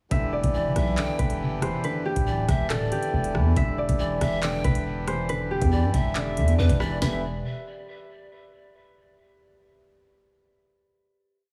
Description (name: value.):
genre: hip hop, drill.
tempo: 139 BPM.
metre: 4/4.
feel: half-time.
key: E minor.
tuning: A4 = 440 Hz.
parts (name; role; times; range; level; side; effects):
Celtic harp; melody; 0.1-7.2 s; G4 to E5; -33 LUFS; equal; none.
dark grand piano; accompaniment; 0.1-7.2 s; D3 to B3; -34 LUFS; equal; none.
hand-pumped harmonium; sustained chords; 0.1-7.2 s; E3 to G4; -38 LUFS; equal; none.
growling 808-style bass; bass; 0.1-7.4 s; D1 to G2; -28 LUFS; equal; none.
drill drum kit; drums; 0.1-7.1 s; handclaps, hi-hat, kick drum, rim click, snare drum; -29 LUFS; equal; none.
breathy pan flute; second line; 0.5-7.2 s; B4 to G5; -37 LUFS; equal; tape echo.
room: little or no reverb.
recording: heavily compressed radio sound, small room reverb.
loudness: -25 LUFS.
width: mono.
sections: 0.1-7.0 hook; 7.0-8.7 final chord.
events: none.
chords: 0.1 Em7.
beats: | 0.11 0.54 0.97 1.41 | 1.84 2.27 2.70 3.13 | 3.56 4.00 4.43 4.86 | 5.29 5.72 6.16 6.59 | 7.02.